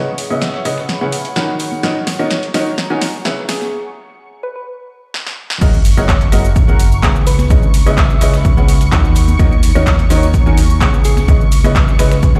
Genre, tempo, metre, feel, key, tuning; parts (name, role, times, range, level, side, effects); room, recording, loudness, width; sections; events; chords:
piano house; 127 BPM; 4/4; straight; C# dorian; A4 = 442 Hz
analog string pad; sustained chords; 0.0-12.4 s; C#6; -32 LUFS; equal; ensemble chorus, sidechain pumping
bright upright piano; riff; 0.0-12.4 s; C#3 to G#5; -23 LUFS; equal; sidechain pumping, low-pass filter, digital delay
modern bright fingered electric bass; bass; 0.0-12.4 s; F#1 to D#2; -19 LUFS; equal; sidechain pumping, high-pass filter
warbly tape-like pad; texture; 0.0-12.4 s; G#4 to B5; -32 LUFS; equal; chorus, built-in reverb, sidechain pumping
dusty soul sampler-style drum kit; drums; 0.2-12.3 s; hi-hat, shaker, snare drum; -32 LUFS; equal; sidechain pumping on perc, high-pass filter on perc, high-pass filter on snare, sidechain pumping on hats, high-pass filter on hats
house drum kit; drums; 0.2-12.4 s; cabasa, crash cymbal, finger snaps, handclaps, hi-hat, snare drum; -24 LUFS; equal
tambourine and congas; percussion; 0.2-12.4 s; -31 LUFS; equal
soft struck synth lead; melody; 0.3-12.2 s; G#4 to E5; -28 LUFS; equal; chorus, phaser, digital delay
electronic kick drum; drums; 5.6-12.3 s; -14 LUFS; equal
light reverb; played on a big sound system in a bare room, large studio reverb, high-pass filter; -13 LUFS; mono
0.0-5.6 A section; 5.6-12.4 B section
build-up 0.0-5.6; drum fill 0.0-3.7, 5.1-5.6; filter sweep on upright piano 0.0-5.6; filter sweep 0.0-5.6; break 3.7-5.6; drop 5.6-12.4
0.0 C#m9; 3.5 C#m; 5.6 F#13; 7.3 C#m9